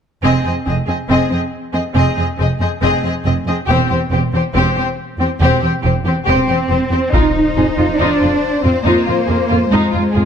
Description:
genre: cinematic, epic orchestral film score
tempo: 70 BPM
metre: 4/4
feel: straight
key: F dorian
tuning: A4 = 440 Hz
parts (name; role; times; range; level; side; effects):
- warm symphonic violin section; melody; 0.2-10.3 s; C5 to Eb5; -23 LUFS; left 6 dB; none
- rich studio violin section; second line; 0.2-10.2 s; Eb4 to Ab4; -21 LUFS; left 2 dB; none
- rich symphonic viola section; accompaniment; 0.2-10.2 s; C4 to F4; -21 LUFS; equal; none
- clear symphonic double bass section; bass; 0.2-10.2 s; E1 to F2; -19 LUFS; right 2 dB; none
- rich symphonic cello section; bass; 0.2-10.3 s; E2 to Eb4; -18 LUFS; right 1 dB; none
- taiko ensemble; drums; 7.1-8.8 s; none; -18 LUFS; left 1 dB; none
- impact; sound effects; 7.1-10.3 s; none; -24 LUFS; left 1 dB; none
room: moderate scoring stage reverb, RT60 1.9 s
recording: none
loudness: -13 LUFS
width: side -8 dB against mid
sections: 0.2-7.1 A section; 7.1-10.3 B section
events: impact 7.1-10.3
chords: 0.2 Fm7; 3.7 C/E; 7.1 Fm7

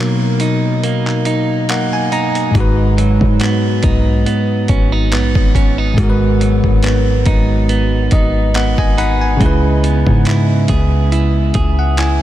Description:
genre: contemporary R&B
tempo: 70 BPM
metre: 4/4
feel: swing 54% on 16ths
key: G# minor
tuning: A4 = 441 Hz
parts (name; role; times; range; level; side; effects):
- bell-like tine electric piano; accompaniment; 0.0-12.2 s; G#2 to B5; -16 LUFS; left 1 dB; none
- clean electric guitar; arpeggios; 0.0-12.2 s; G#2 to G#4; -19 LUFS; right 5 dB; analog delay
- dusty soul sampler-style drum kit; drums; 0.4-12.2 s; handclaps, hi-hat, kick drum; -19 LUFS; equal; none
- warm 808-style bass; bass; 2.6-12.2 s; G#1 to G#2; -16 LUFS; equal; none
room: moderate huge ambient reverb, RT60 8.3 s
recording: dreamy mix soaked in reverb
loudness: -12 LUFS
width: side -13 dB against mid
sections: 0.0-12.2 A section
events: break 0.0-2.5; tine electric piano fill 1.3-2.5, 7.7-9.4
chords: 0.0 Bmaj7; 2.5 G#m7; 9.4 C#m7

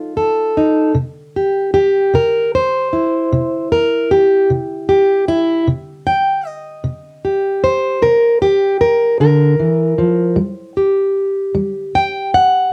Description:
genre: acoustic country blues, solo or duo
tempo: 51 BPM (dotted quarters)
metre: 12/8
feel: straight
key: C mixolydian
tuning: A4 = 440 Hz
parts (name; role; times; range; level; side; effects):
- fingerpicked plugged-in steel-string acoustic guitar; solo; 0.0-12.7 s; C3 to G5; -15 LUFS; equal; cassette tape
room: light reverb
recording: home recording on cassette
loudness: -15 LUFS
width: mono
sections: 0.0-12.7 A section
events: steel-string acoustic guitar solo 0.0-12.7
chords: 0.0 F7; 1.0 C7; 10.4 N.C.

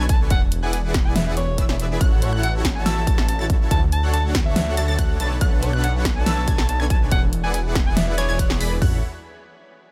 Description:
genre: future bass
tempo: 141 BPM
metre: 4/4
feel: half-time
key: A major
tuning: A4 = 442 Hz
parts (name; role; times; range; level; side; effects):
- unison pluck; arpeggios; 0.0-9.0 s; E6 to B6; -35 LUFS; equal; sidechain pumping, dub echo
- dense compressed supersaw; riff; 0.0-9.0 s; D4 to B5; -31 LUFS; equal; sidechain pumping
- detuned saw bass; bass; 0.0-9.0 s; E1 to D2; -25 LUFS; equal; chorus, sidechain pumping
- breathy alto saxophone; melody; 0.1-8.6 s; C#5 to A5; -31 LUFS; equal; sidechain pumping, dub echo
- big-room dance drum kit; drums; 0.1-8.9 s; hi-hat, kick drum, toms; -22 LUFS; equal; studio reverb
- big-room dance drum kit; drums; 0.1-8.7 s; hi-hat, snare drum; -27 LUFS; equal; studio reverb
room: little or no reverb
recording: none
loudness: -20 LUFS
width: mono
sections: 0.0-8.8 A section; 8.8-9.9 B section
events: drop 0.0-8.8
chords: 0.3 E9; 2.0 A6; 3.7 Dmaj7; 5.2 Bm9; 7.1 E9; 8.8 A6

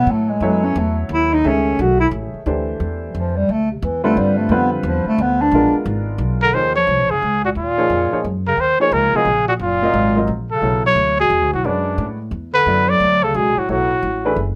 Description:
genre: modal jazz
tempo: 176 BPM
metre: 3/4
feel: swing 64% on 8ths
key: unclear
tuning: A4 = 440 Hz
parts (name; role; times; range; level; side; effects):
- mellow bass clarinet; second line; 0.0-14.3 s; F#2 to F#4; -22 LUFS; equal; none
- warm upright piano; accompaniment; 0.0-14.4 s; D3 to E5; -25 LUFS; equal; none
- upright bass; bass; 0.0-14.6 s; Gb1 to A2; -24 LUFS; equal; none
- mellow trumpet; melody; 6.4-14.3 s; D4 to D5; -19 LUFS; equal; none
room: light reverb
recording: none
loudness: -17 LUFS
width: mono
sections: 0.0-6.5 A section; 6.5-14.6 B section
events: bass clarinet solo 0.0-6.5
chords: 0.0 F#m9; 2.5 Dm9; 5.5 A#7b9; 6.5 Ebm9; 10.6 Bm9

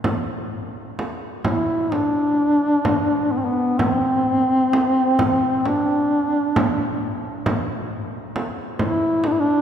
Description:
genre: caucasian folk, Caucasian lament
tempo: 65 BPM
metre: 4/4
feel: rubato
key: unclear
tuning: A4 = 440 Hz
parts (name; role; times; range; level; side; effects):
- frame drum; percussion; 0.0-9.4 s; none; -25 LUFS; right 1 dB; none
- dark duduk; melody; 1.5-9.6 s; B3 to E4; -18 LUFS; equal; none
room: wet church reverb, RT60 3.6 s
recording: recorded in a church or concert hall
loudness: -18 LUFS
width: side -8 dB against mid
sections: 0.0-9.6 A section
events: none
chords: none

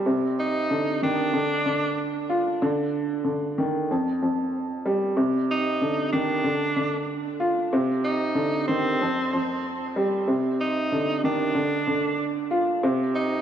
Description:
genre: hip hop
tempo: 94 BPM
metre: 4/4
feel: swing 61% on 16ths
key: C minor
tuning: A4 = 440 Hz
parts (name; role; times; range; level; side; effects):
- dark upright piano; accompaniment; 0.0-13.4 s; F2 to F4; -23 LUFS; equal; high-pass filter, low-pass filter
- edgy tenor saxophone; melody; 0.4-13.4 s; C4 to Eb4; -28 LUFS; right 2 dB; high-pass filter, low-pass filter, tape echo
room: wet plate reverb, RT60 3.3 s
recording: dreamy mix soaked in reverb, studio reverb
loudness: -22 LUFS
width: side -9 dB against mid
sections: 0.0-13.4 A section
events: none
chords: 0.1 Cmadd9; 1.3 Dm; 2.6 N.C.; 3.9 Fsus2; 5.2 Cmadd9; 6.4 Dm; 7.7 Cmadd9; 9.0 Fsus2; 10.3 Cmadd9; 11.6 Dm; 12.8 Cm

